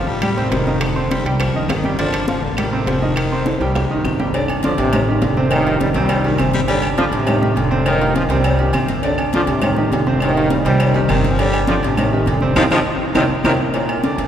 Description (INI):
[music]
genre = latin, salsa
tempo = 204 BPM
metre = 4/4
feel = straight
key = G minor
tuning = A4 = 439 Hz
[part]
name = raspy baritone saxophone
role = second line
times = 0.0-6.9, 10.9-13.5 s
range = C3 to G3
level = -26 LUFS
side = left 2 dB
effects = none
[part]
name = bright concert grand piano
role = accompaniment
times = 0.0-14.3 s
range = Bb2 to C6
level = -21 LUFS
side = right 2 dB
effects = none
[part]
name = upright bass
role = bass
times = 0.1-14.3 s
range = F1 to F2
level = -20 LUFS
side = equal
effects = none
[part]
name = congas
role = percussion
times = 0.1-14.3 s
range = none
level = -25 LUFS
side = equal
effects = none
[part]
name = bongos and cowbell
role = percussion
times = 0.2-14.3 s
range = none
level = -27 LUFS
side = left 2 dB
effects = none
[part]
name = claves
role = percussion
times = 0.2-14.0 s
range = none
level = -32 LUFS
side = equal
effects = none
[part]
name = timbales and agogo bells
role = percussion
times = 0.2-14.3 s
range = none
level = -26 LUFS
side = right 3 dB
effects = none
[part]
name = bright trombone section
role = melody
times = 4.6-13.5 s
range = Eb2 to G3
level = -20 LUFS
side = equal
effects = none
[sound]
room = wet cathedral reverb, RT60 5.0 s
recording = recorded in a church or concert hall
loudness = -15 LUFS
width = side -9 dB against mid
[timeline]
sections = 0.0-4.3 A section; 4.3-13.7 B section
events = drum fill 3.5-4.3, 12.9-13.7; band accent 12.6-13.7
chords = 0.2 Am7b5; 0.8 Fsus2; 1.4 Cm; 2.0 G5; 2.6 Am7b5; 3.2 Fsus2; 3.8 Cm; 4.3 G5; 4.9 Am7b5; 5.5 F9; 6.1 Cm7; 6.7 G5; 7.3 Am7b5; 7.9 F9; 8.4 Cm7; 9.0 G5; 9.6 Am7b5; 10.2 F9; 10.8 Cm7; 11.4 G5; 12.0 Am7b5; 12.6 F5; 13.2 Cm7; 13.7 Bbmaj7